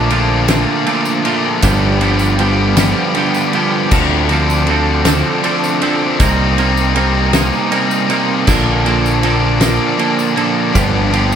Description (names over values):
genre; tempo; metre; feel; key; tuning
indie rock; 53 BPM (dotted quarters); 6/8; straight; unclear; A4 = 440 Hz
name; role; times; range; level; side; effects
combo organ; sustained chords; 0.0-11.4 s; Bb3 to Eb6; -26 LUFS; right 1 dB; none
biting overdriven guitar; riff; 0.0-11.4 s; G2 to Eb4; -16 LUFS; left 6 dB; none
clean electric guitar; riff; 0.0-11.4 s; G2 to Bb4; -17 LUFS; right 7 dB; analog chorus, tape echo
growling picked electric bass; bass; 0.0-11.4 s; G1 to D2; -16 LUFS; equal; overdrive
loose indie drum kit; drums; 0.1-11.3 s; crash cymbal, kick drum, ride cymbal, snare drum; -20 LUFS; left 1 dB; none
tambourine; percussion; 0.5-11.4 s; none; -30 LUFS; right 8 dB; tape echo
room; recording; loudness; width
light reverb, small room reverb; echo-heavy mix; -12 LUFS; side -8 dB against mid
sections
0.0-11.4 A section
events
none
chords
0.0 Bbmaj7; 1.6 G7; 3.9 Dm7; 6.2 Cm7; 8.5 Bbmaj7; 10.8 G7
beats
0.48 | 1.63 2.77 | 3.91 5.05 | 6.19 7.33 | 8.47 9.61 | 10.75